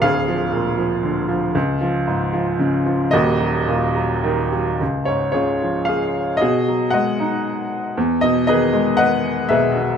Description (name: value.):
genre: classical, lyrical solo piano.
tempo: 102-121 BPM.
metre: 3/4.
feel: rubato.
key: unclear.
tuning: A4 = 440 Hz.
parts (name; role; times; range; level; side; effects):
clear upright piano; solo; 0.0-10.0 s; D1 to F#5; -17 LUFS; equal; none.
room: moderate recital hall reverb, RT60 1.8 s.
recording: none.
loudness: -17 LUFS.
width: side -7 dB against mid.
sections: 0.0-4.8 A section; 4.8-10.0 B section.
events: none.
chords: 0.0 Bb7/D; 1.6 Db; 3.1 Ebm; 4.8 Db; 6.4 B6; 8.0 Emaj7.